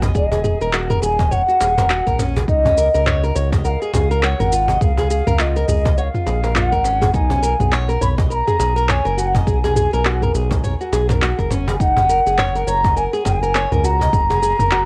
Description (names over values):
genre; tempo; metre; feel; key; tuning
organic downtempo; 103 BPM; 4/4; swing 58% on 16ths; unclear; A4 = 442 Hz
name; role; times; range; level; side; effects
flamenco guitar; arpeggios; 0.0-14.9 s; Db4 to Eb5; -25 LUFS; equal; tape echo, plate reverb
round analog bass; bass; 0.0-14.9 s; Eb1 to Db2; -23 LUFS; equal; sidechain pumping
deep house drum kit; drums; 0.0-14.9 s; handclaps, shaker, toms; -24 LUFS; equal; cassette tape
cajon; percussion; 0.0-14.4 s; none; -29 LUFS; equal; none
electronic kick drum; drums; 0.1-14.3 s; none; -22 LUFS; equal; cassette tape
mellow hollow bansuri; melody; 0.2-14.9 s; Eb5 to B5; -22 LUFS; equal; analog delay, plate reverb
room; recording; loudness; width
wet small room ambience, RT60 0.5 s; home recording on cassette; -17 LUFS; mono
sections
0.0-14.9 A section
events
none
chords
0.0 Ebm; 2.5 Db; 7.1 B5; 11.8 Gbadd9